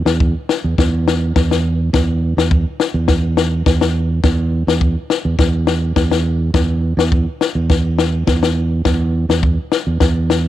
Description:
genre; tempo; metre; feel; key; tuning
highlife guitar band; 104 BPM; 4/4; straight; unclear; A4 = 439 Hz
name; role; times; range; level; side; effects
fingered electric bass; bass; 0.0-10.5 s; E2; -16 LUFS; right 2 dB; none
compact cocktail drum kit; drums; 0.1-10.4 s; kick drum, snare drum; -16 LUFS; left 3 dB; none
room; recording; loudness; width
little or no reverb; 1960s-style stereo; -14 LUFS; side -13 dB against mid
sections
0.0-10.5 A section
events
none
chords
none

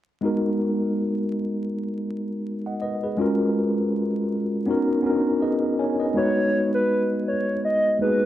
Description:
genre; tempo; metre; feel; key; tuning
hip hop; 81 BPM; 4/4; swing 57% on 16ths; G# dorian; A4 = 439 Hz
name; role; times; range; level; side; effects
mellow tine electric piano; accompaniment; 0.2-8.3 s; G#3 to G#5; -22 LUFS; equal; medium stereo tremolo, cassette tape, low-pass filter
warbly nostalgic lead; melody; 6.2-8.3 s; B4 to D#5; -22 LUFS; equal; chorus, low-pass filter
room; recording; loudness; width
wet plate reverb, RT60 2.7 s; vinyl crackle; -21 LUFS; side -13 dB against mid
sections
0.2-6.2 A section; 6.2-8.3 B section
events
tine electric piano fill 5.0-6.2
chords
0.2 G#m7; 3.2 F#maj7; 4.7 Bmaj7; 6.2 G#m7

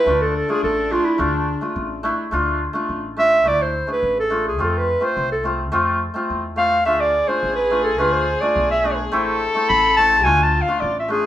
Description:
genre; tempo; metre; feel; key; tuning
klezmer; 106 BPM; 2/4; straight; D dorian sharp4; A4 = 440 Hz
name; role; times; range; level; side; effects
clear clarinet; melody; 0.0-11.3 s; D4 to B5; -17 LUFS; equal; none
dark violin; second line; 0.0-2.0, 6.9-11.1 s; D4 to A4; -25 LUFS; left 3 dB; none
hammered dulcimer; accompaniment; 0.1-11.2 s; A3 to G#4; -23 LUFS; left 1 dB; none
upright bass; bass; 0.1-11.2 s; A1 to F2; -27 LUFS; equal; none
room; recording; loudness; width
wet studio reverb, RT60 0.6 s; band playing live in one room, faint mains hum; -17 LUFS; side -12 dB against mid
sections
0.0-2.3 A section; 2.3-11.3 B section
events
clarinet solo 2.3-11.3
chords
0.1 Dm; 4.6 F; 6.9 Dm; 9.1 Am; 10.3 Dm

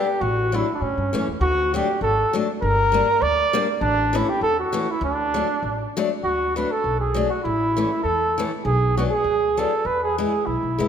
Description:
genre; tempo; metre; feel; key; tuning
alpine folk, alpine dance band; 99 BPM; 2/4; swing 54% on 8ths; D major; A4 = 440 Hz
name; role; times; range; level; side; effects
warm flugelhorn; melody; 0.0-10.9 s; C#4 to D5; -21 LUFS; right 2 dB; none
picked old ladder-braced acoustic guitar; accompaniment; 0.0-10.9 s; E3 to E4; -26 LUFS; left 5 dB; none
upright bass; bass; 0.2-10.9 s; G1 to A2; -26 LUFS; equal; none
room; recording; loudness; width
wet concert hall reverb, RT60 2.3 s; none; -19 LUFS; side -8 dB against mid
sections
0.0-6.2 A section; 6.2-10.9 B section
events
none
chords
0.2 D/A; 0.8 A; 1.4 D; 2.6 Gm; 3.8 A; 5.0 D; 7.4 A; 8.6 Bm; 9.9 E

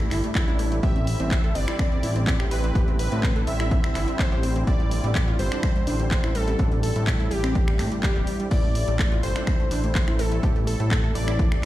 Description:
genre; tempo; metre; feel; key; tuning
progressive house; 125 BPM; 4/4; straight; unclear; A4 = 440 Hz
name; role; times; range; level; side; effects
plucky unison lead; melody; 0.0-11.7 s; E4 to E5; -31 LUFS; left 1 dB; sidechain pumping, ping-pong delay
filtered supersaw swell; sustained chords; 0.0-11.7 s; C3 to E4; -33 LUFS; right 1 dB; sidechain pumping
wide unison pluck; arpeggios; 0.0-11.6 s; G3 to A4; -31 LUFS; equal; sidechain pumping, ping-pong delay
house drum kit; drums; 0.0-11.6 s; crash cymbal, finger snaps, handclaps, hi-hat; -32 LUFS; equal; none
fat analog bass; bass; 0.1-11.5 s; E1 to A2; -26 LUFS; equal; sidechain pumping
electronic kick drum; drums; 0.4-11.5 s; none; -24 LUFS; equal; none
room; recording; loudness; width
little or no reverb; played on a big sound system in a bare room, large studio reverb; -20 LUFS; side -15 dB against mid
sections
0.0-11.7 A section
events
none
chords
0.0 Cadd9; 8.5 Am7

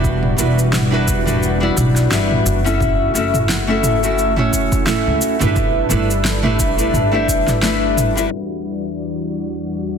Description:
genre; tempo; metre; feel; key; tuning
sunset chillout; 87 BPM; 4/4; swing 56% on 16ths; E dorian; A4 = 441 Hz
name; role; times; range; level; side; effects
nylon-string guitar; accompaniment; 0.0-10.0 s; G3 to E5; -18 LUFS; moving between left 5 dB and right 5 dB; auto-pan, low-pass filter, tape echo
lush unison pad; sustained chords; 0.0-10.0 s; E2 to D5; -24 LUFS; left 1 dB; chorus
upright bass; bass; 0.0-8.2 s; E1 to C#2; -20 LUFS; equal; none
deep house drum kit; drums; 0.0-10.0 s; cabasa, hi-hat, snare drum, toms; -21 LUFS; right 1 dB; small room ambience
electronic kick drum; drums; 0.0-7.4 s; none; -22 LUFS; equal; small room ambience
room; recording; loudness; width
moderate lush hall reverb, RT60 1.7 s; dense, heavily limited modern master, low-pass filter; -14 LUFS; side -7 dB against mid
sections
0.0-8.3 A section; 8.3-10.0 B section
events
filter sweep on nylon-string guitar 8.3-10.0; filter sweep 8.3-10.0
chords
0.0 Em9; 2.8 F#m7; 5.6 G6; 8.3 Em9

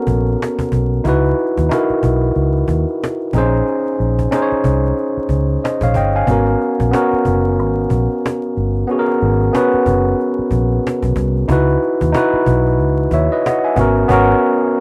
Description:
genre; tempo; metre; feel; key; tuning
R&B, neo-soul; 92 BPM; 4/4; swing 58% on 16ths; G# minor; A4 = 440 Hz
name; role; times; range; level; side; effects
overdriven tine electric piano; accompaniment; 0.0-14.8 s; B3 to G#5; -18 LUFS; equal; none
vintage muted fingered electric bass; bass; 0.1-14.3 s; F#1 to D#2; -19 LUFS; equal; none
cajon; drums; 0.1-14.3 s; none; -25 LUFS; equal; none
room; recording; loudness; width
light reverb; rough home demo mix, vinyl crackle; -16 LUFS; mono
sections
0.0-14.8 A section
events
band accent 14.1-14.8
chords
0.0 G#m11 (rootless); 1.0 C#m11; 3.3 A#m11; 6.3 G#m11; 11.5 C#m11; 13.8 G#m11

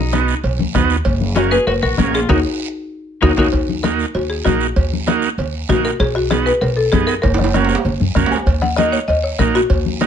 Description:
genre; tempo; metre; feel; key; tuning
latin, cumbia; 194 BPM; 4/4; straight; Eb minor; A4 = 440 Hz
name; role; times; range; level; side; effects
buzzing marimba with hard mallets; melody; 0.0-10.1 s; Eb4 to Ab5; -19 LUFS; left 3 dB; none
semi-hollow electric guitar; second line; 0.0-3.5 s; Bb3 to Ab4; -25 LUFS; left 5 dB; none
upright bass; bass; 0.0-10.1 s; Gb1 to F#2; -20 LUFS; equal; none
combo organ; accompaniment; 0.1-10.1 s; Bb3 to Ab4; -20 LUFS; right 8 dB; none
bombo; percussion; 0.1-10.1 s; none; -20 LUFS; left 1 dB; none
congas; percussion; 0.1-10.1 s; none; -23 LUFS; left 6 dB; none
cowbell and timbales; percussion; 0.1-10.1 s; none; -25 LUFS; right 6 dB; none
guiro; percussion; 0.1-10.1 s; none; -31 LUFS; right 8 dB; none
room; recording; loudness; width
light reverb; nothing above 10.6 kHz; -14 LUFS; side -8 dB against mid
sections
0.0-3.5 A section; 3.5-10.1 B section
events
drum fill 2.3-3.5, 7.2-8.5; band accent 2.3-3.5; marimba solo 3.5-10.1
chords
0.0 B; 1.1 Gb; 2.3 Ebm; 6.0 B; 7.2 Gb; 8.5 Ebm

